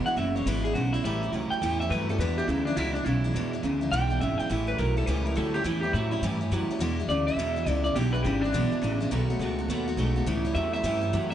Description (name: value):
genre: rockabilly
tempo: 208 BPM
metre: 4/4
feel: swing 63% on 8ths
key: unclear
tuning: A4 = 440 Hz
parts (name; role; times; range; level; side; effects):
- picked steel-string acoustic guitar; accompaniment; 0.0-11.3 s; E2 to F#4; -33 LUFS; left 2 dB; none
- electric guitar through a small old amp; riff; 0.0-11.3 s; E2 to G#3; -30 LUFS; right 2 dB; analog chorus
- upright bass; bass; 0.0-11.3 s; F#1 to A2; -29 LUFS; equal; none
- electric guitar through a small old amp; melody; 0.1-11.3 s; D4 to G5; -30 LUFS; equal; digital delay
room: light reverb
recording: nothing above 10.7 kHz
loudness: -25 LUFS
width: side -10 dB against mid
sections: 0.0-11.3 A section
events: clean electric guitar solo 0.0-11.3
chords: 0.0 E7; 1.0 A7; 2.2 E7; 4.5 A7; 6.8 E7; 9.1 B7; 10.3 A7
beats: 0.17 0.46 0.74 | 1.03 1.32 1.61 1.90 | 2.19 2.48 2.77 3.06 | 3.34 3.63 3.92 4.21 | 4.50 4.79 5.08 5.37 | 5.65 5.94 6.23 6.52 | 6.81 7.10 7.38 7.67 | 7.96 8.25 8.54 8.83 | 9.11 9.40 9.69 9.98 | 10.27 10.56 10.85 11.13